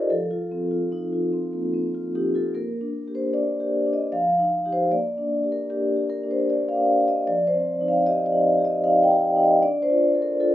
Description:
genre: classical, contemporary piece for solo vibraphone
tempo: 76 BPM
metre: 3/4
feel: rubato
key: Bb major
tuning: A4 = 440 Hz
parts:
  - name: vibraphone with soft mallets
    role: solo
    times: 0.0-10.5 s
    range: F3 to G5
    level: -20 LUFS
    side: equal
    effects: none
room: light reverb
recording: minimal, uncompressed stereo recording, lossy compression artefacts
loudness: -20 LUFS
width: side -13 dB against mid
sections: 0.0-2.5 A section; 2.5-10.5 B section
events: none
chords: 0.1 F7; 2.5 Bb6; 4.1 Fsus2; 4.9 Bb6; 7.3 Fsus2; 9.6 Dm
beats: | 0.09 0.92 1.74 | 2.55 3.33 4.12 | 4.92 5.71 6.49 | 7.27 8.06 8.84 | 9.61 10.38

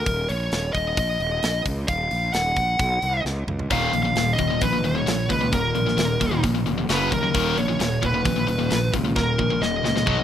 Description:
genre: heavy metal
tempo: 132 BPM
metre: 4/4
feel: straight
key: Eb minor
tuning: A4 = 440 Hz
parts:
  - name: high-gain lead guitar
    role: melody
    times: 0.0-10.2 s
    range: Bb4 to Gb5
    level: -24 LUFS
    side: equal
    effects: distortion, digital delay
  - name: fuzz fingered electric bass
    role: bass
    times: 0.0-10.2 s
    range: Eb1 to Eb2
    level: -27 LUFS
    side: equal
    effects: overdrive
  - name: tight metal drum kit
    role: drums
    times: 0.1-10.2 s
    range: hi-hat, kick drum, snare drum, toms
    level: -28 LUFS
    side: equal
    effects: none
  - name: sludgy distorted guitar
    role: riff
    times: 3.7-10.2 s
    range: Eb2 to B3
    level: -28 LUFS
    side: right 9 dB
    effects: overdrive
  - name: tight distorted guitar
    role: riff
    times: 3.7-10.2 s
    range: Eb2 to B3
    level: -25 LUFS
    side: left 8 dB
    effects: distortion
room: small room ambience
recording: rough home demo mix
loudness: -20 LUFS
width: side -10 dB against mid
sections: 0.0-10.2 A section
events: drum fill 3.3-3.7, 9.2-10.2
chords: 0.1 Eb5; 2.8 B5; 3.3 N.C.; 3.7 Eb5; 6.9 Gb5; 7.3 Eb5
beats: | 0.06 0.52 0.97 1.43 | 1.89 2.34 2.79 3.25 | 3.71 4.16 4.62 5.07 | 5.53 5.98 6.43 6.89 | 7.34 7.80 8.25 8.71 | 9.16 9.62 10.07

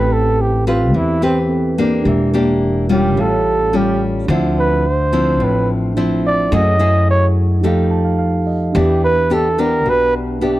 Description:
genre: bossa nova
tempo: 108 BPM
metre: 4/4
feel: straight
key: A minor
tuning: A4 = 440 Hz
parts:
  - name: breathy flugelhorn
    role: melody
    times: 0.0-10.6 s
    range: C4 to D#5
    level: -17 LUFS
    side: right 2 dB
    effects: none
  - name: mellow tine electric piano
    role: accompaniment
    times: 0.0-10.6 s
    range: C4 to A5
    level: -23 LUFS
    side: right 5 dB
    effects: none
  - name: nylon-string guitar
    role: accompaniment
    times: 0.0-10.6 s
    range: A2 to B4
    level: -18 LUFS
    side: left 2 dB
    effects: none
  - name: upright bass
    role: bass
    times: 0.0-10.6 s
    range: E1 to F#2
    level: -18 LUFS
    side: equal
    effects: none
room: studio reverb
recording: dry, close 1970s-style studio recording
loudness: -13 LUFS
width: side -16 dB against mid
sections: 0.0-10.6 A section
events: flugelhorn solo 0.0-10.6; tine electric piano fill 7.6-8.7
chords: 0.0 Am9; 2.1 Em7b5; 3.2 Aaug7; 4.3 Dm9; 6.5 F#m9; 7.6 F9; 8.7 Em7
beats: 0.39 0.94 1.50 | 2.06 2.62 3.17 3.73 | 4.29 4.85 5.41 5.96 | 6.52 7.08 7.63 8.19 | 8.75 9.30 9.86 10.42

